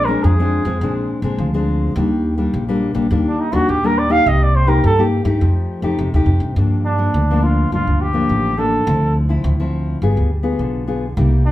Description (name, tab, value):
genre	samba and choro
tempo	104 BPM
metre	4/4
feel	straight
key	Bb major, G minor from 6.6 s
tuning	A4 = 441 Hz
part	warm flugelhorn	melody	0.0-11.5 s	D4 to F5	-19 LUFS	right 1 dB	none
part	nylon-string guitar	accompaniment	0.0-11.5 s	G2 to Ab4	-19 LUFS	left 2 dB	none
part	upright bass	bass	0.0-11.5 s	G1 to G2	-17 LUFS	equal	none
room	wet studio reverb, RT60 0.6 s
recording	heard from further back in the room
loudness	-15 LUFS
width	side -14 dB against mid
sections	0.0-6.6 A section; 6.6-11.5 B section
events	flugelhorn solo 0.0-6.6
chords	0.0 Bb9; 2.0 Ebmaj7; 4.3 Cm7; 5.4 F9; 6.6 Gm7; 8.9 Dm9; 10.0 G7b9